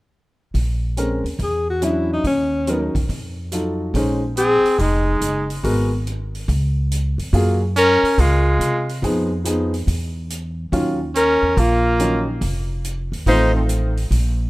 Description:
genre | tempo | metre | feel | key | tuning
jazz, small-group swing and bop | 142 BPM | 4/4 | swing 67% on 8ths | Bb minor | A4 = 440 Hz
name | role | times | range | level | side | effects
upright bass | bass | 0.5-14.5 s | F1 to C3 | -21 LUFS | equal | none
swinging big-band drum kit | drums | 0.5-14.2 s | hi-hat, kick drum | -28 LUFS | equal | none
warm grand piano | accompaniment | 1.0-13.9 s | Eb3 to C5 | -22 LUFS | equal | none
clear alto saxophone | melody | 1.4-13.6 s | Db4 to C5 | -19 LUFS | left 2 dB | none
brilliant trumpet | second line | 4.4-13.6 s | Ab3 to Eb4 | -22 LUFS | right 2 dB | none
room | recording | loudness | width
light reverb, small room ambience | rough home demo mix | -17 LUFS | side -20 dB against mid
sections
0.5-3.9 A section; 3.9-14.5 B section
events
none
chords
0.5 Bbm9; 1.4 Esus2; 2.2 Ebm7; 3.1 F7b9; 3.9 Bbm11; 5.6 Abm9; 6.5 Db; 7.3 Gbmaj9; 9.0 Fm7b5; 9.9 N.C.; 10.7 Ebm9; 12.4 F7

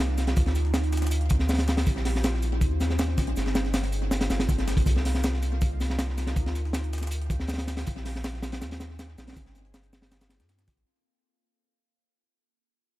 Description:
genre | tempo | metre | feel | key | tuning
drum and bass, jungle | 160 BPM | 4/4 | straight | unclear | A4 = 439 Hz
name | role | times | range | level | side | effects
ethereal airy pad | sustained chords | 0.0-10.9 s | Bb3 to Bb4 | -36 LUFS | right 2 dB | ensemble chorus, built-in reverb, phaser, vintage 12-bit sampler grit
saturated sub bass | bass | 0.0-10.8 s | G1 to G2 | -28 LUFS | equal | tube saturation
crunchy breakbeat drum kit | drums | 0.1-10.8 s | hi-hat, kick drum, snare drum | -27 LUFS | equal | tape echo
breakbeat sampler-style drum kit | drums | 0.2-10.9 s | hi-hat, shaker, snare drum | -42 LUFS | equal | high-pass filter on perc, high-pass filter on hats, high-pass filter on snare, tape echo
room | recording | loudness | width
small room ambience | echo-heavy mix | -24 LUFS | side -16 dB against mid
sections
0.0-10.9 A section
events
drop 0.0-10.9; fade-out 4.9-10.9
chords
0.4 Dm11; 1.9 Bbm11; 3.4 Gm11; 4.9 Cm11; 6.4 Dm11; 7.9 Bbm11; 9.4 Gm11

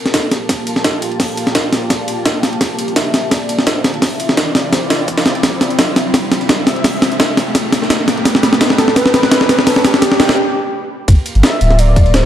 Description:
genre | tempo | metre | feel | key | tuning
liquid drum and bass | 170 BPM | 4/4 | swing 53% on 16ths | G dorian | A4 = 440 Hz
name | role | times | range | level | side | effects
warm velvety synth lead | melody | 0.0-5.1, 8.8-12.3 s | G4 to E5 | -20 LUFS | equal | chorus, dub echo
lush unison pad | sustained chords | 0.0-12.3 s | A3 to A5 | -22 LUFS | equal | chorus, phaser, sidechain pumping
riser | sound effects | 2.0-10.4 s | none | -23 LUFS | equal | none
breakbeat sampler-style drum kit | drums | 0.1-12.3 s | hi-hat, snare drum | -14 LUFS | equal | studio reverb
breakbeat sampler-style drum kit | drums | 0.1-12.2 s | hi-hat, ride cymbal, snare drum | -19 LUFS | equal | high-pass filter on cymbals, studio reverb, high-pass filter on snare, high-pass filter on hats, high-pass filter on room
electronic kick drum | drums | 0.1-12.3 s | none | -17 LUFS | equal | high-pass filter on kick, studio reverb, high-pass filter on room
saturated sub bass | bass | 11.1-12.3 s | D1 to G1 | -11 LUFS | equal | none
room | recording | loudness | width
moderate lush hall reverb, RT60 1.8 s | dark, warm production | -11 LUFS | side -10 dB against mid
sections
0.0-11.1 A section; 11.1-12.3 B section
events
build-up 0.0-11.1; drum fill 0.0-10.4; filter sweep on analog synth pad 0.0-11.1; filter sweep on soft synth lead 0.0-11.1; riser 2.0-10.4; break 10.4-11.1; drop 11.1-12.3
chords
0.0 Gm9; 3.8 Dm9; 7.6 Am9; 11.1 Gm7

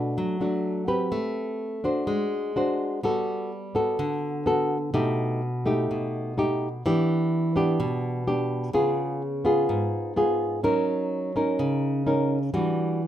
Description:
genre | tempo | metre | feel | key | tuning
bossa nova | 126 BPM | 4/4 | straight | unclear | A4 = 440 Hz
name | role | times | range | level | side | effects
nylon-string guitar | solo | 0.0-13.1 s | G#2 to C5 | -23 LUFS | equal | none
room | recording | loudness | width
light reverb | minimal, uncompressed stereo recording | -23 LUFS | side -11 dB against mid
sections
0.0-13.1 A section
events
none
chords
0.0 Bm7; 1.1 Am9; 2.1 G#7#11; 3.0 Gmaj9; 4.9 Baug7; 6.8 Em7; 8.7 C#7; 10.6 F#6; 12.5 Em9

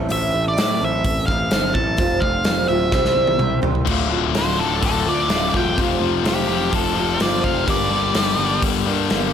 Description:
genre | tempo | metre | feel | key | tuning
quiet-loud alternative rock | 127 BPM | 4/4 | straight | D minor | A4 = 441 Hz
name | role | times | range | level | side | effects
picked acoustic archtop guitar | arpeggios | 0.0-9.3 s | D2 to C5 | -24 LUFS | right 2 dB | none
fuzz picked electric bass | bass | 0.0-9.3 s | D1 to A2 | -24 LUFS | equal | overdrive
octave-fuzz lead guitar | melody | 0.1-8.6 s | G4 to A5 | -23 LUFS | right 1 dB | distortion, analog delay
big rock drum kit | drums | 0.1-9.2 s | crash cymbal, hi-hat, kick drum, snare drum, toms | -23 LUFS | equal | none
high-gain distorted guitar | riff | 3.9-9.3 s | D2 to G3 | -22 LUFS | left 13 dB | distortion
room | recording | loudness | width
light reverb | none | -17 LUFS | side -8 dB against mid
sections
0.0-3.9 A section; 3.9-9.3 B section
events
drum fill 2.9-3.9; lead electric guitar solo 3.9-9.3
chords
0.0 Am; 2.0 Fsus2; 2.9 C; 3.9 Dm; 5.8 Fsus2; 7.7 Gm

